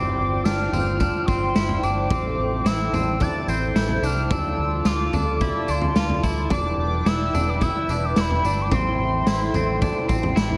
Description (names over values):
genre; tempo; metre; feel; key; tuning
dream pop; 109 BPM; 4/4; straight; A minor; A4 = 436 Hz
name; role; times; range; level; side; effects
warbly nostalgic lead; melody; 0.0-10.3 s; B5 to A6; -30 LUFS; equal; chorus, delay, shimmer reverb
phased analog pad; sustained chords; 0.0-10.6 s; E4 to A5; -31 LUFS; equal; phaser, chorus, shimmer reverb
clean electric guitar; arpeggios; 0.0-10.6 s; C4 to F4; -30 LUFS; equal; lush chorus, delay, shimmer reverb
vintage muted fingered electric bass; bass; 0.0-10.6 s; E1 to D2; -28 LUFS; equal; none
raw garage drum kit; drums; 0.5-10.6 s; kick drum, snare drum, tambourine, toms; -27 LUFS; equal; none
room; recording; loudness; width
moderate lush hall reverb, RT60 1.9 s, studio reverb; none; -22 LUFS; mono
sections
0.0-10.6 A section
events
none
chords
0.0 G7sus4; 2.1 Am7; 4.3 Dm; 6.5 Em7; 8.7 Am7